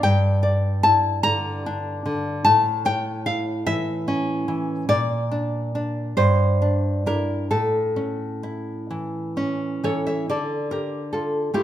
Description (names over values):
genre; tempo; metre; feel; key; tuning
romantic piece for solo classical guitar; 43-51 BPM (dotted quarters); 6/8; rubato; unclear; A4 = 440 Hz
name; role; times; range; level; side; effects
nylon-string guitar; solo; 0.0-11.6 s; G2 to Bb5; -20 LUFS; equal; none
room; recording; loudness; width
moderate recital hall reverb, RT60 1.7 s; minimal, uncompressed stereo recording; -20 LUFS; side -12 dB against mid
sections
0.0-10.3 A section; 10.3-11.6 B section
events
none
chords
0.0 Em7b5/G; 2.4 A; 4.9 Bb; 6.2 Gmadd11; 7.5 A; 10.3 Dm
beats
| 0.04 1.23 | 2.44 3.65 | 4.90 6.19 | 7.53 8.91 | 10.27 11.53